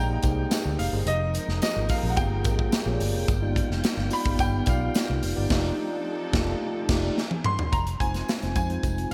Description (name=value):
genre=polished 1980s jazz-funk pop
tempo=108 BPM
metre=4/4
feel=straight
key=F dorian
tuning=A4 = 440 Hz
part: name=clear grand piano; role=melody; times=0.0-9.1 s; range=Eb5 to C6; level=-33 LUFS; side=equal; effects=slapback echo
part: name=mellow tine electric piano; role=accompaniment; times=0.0-9.1 s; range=Ab3 to F5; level=-33 LUFS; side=equal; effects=subtle chorus, slapback echo
part: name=warm studio string section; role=sustained chords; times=0.0-7.7 s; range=F3 to G5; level=-38 LUFS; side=equal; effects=none
part: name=vintage muted fingered electric bass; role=bass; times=0.0-9.1 s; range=F1 to F2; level=-30 LUFS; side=equal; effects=none
part: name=modern studio drum kit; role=drums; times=0.2-9.1 s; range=crash cymbal, hi-hat, kick drum, snare drum, toms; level=-29 LUFS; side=equal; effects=none
part: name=tambourine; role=percussion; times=0.2-9.0 s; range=none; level=-47 LUFS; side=equal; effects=none
room=moderate lush hall reverb, RT60 2.2 s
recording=big arena sound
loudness=-26 LUFS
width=mono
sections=0.0-7.7 A section; 7.7-9.1 B section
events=band accent 5.5-7.7; drum fill 7.2-7.7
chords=0.0 Bb13sus4; 1.1 Fm11; 3.3 G7b13; 5.5 F13; 7.2 Fm9; 7.7 Fm7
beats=0.51 | 1.07 1.62 2.18 2.73 | 3.29 3.84 4.40 4.95 | 5.50 6.06 6.61 7.17 | 7.72 8.28 8.84